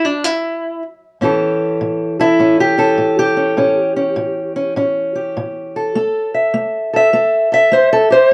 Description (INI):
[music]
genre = acoustic country blues, solo or duo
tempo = 101 BPM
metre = 4/4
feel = swing 65% on 8ths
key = A mixolydian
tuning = A4 = 440 Hz
[part]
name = fingerpicked steel-string acoustic guitar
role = solo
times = 0.0-8.3 s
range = A2 to E5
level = -15 LUFS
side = equal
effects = none
[sound]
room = moderate studio ambience, RT60 0.5 s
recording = worn, warbling old tape, cassette tape, warbly pitch drift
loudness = -15 LUFS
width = mono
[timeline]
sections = 0.0-1.2 A section; 1.2-8.3 B section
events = steel-string acoustic guitar solo 0.0-1.2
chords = 0.0 N.C.; 1.2 A7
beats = 0.03 0.62 | 1.21 1.80 2.39 2.99 | 3.58 4.17 4.76 5.36 | 5.95 6.54 7.13 7.73 | 8.32